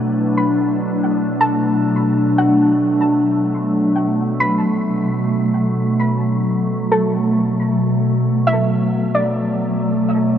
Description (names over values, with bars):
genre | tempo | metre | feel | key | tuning
ambient | free time | none | none | B minor | A4 = 440 Hz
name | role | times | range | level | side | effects
glassy FM pad | sustained chords | 0.0-10.4 s | B2 to B4 | -16 LUFS | equal | ensemble chorus, built-in reverb
soft round pluck | arpeggios | 0.0-10.4 s | A4 to B5 | -23 LUFS | equal | lush chorus, analog delay
room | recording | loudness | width
wet huge ambient reverb, RT60 7.5 s | dreamy mix soaked in reverb | -15 LUFS | side -9 dB against mid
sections
0.0-10.4 A section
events
none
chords
0.0 Bm7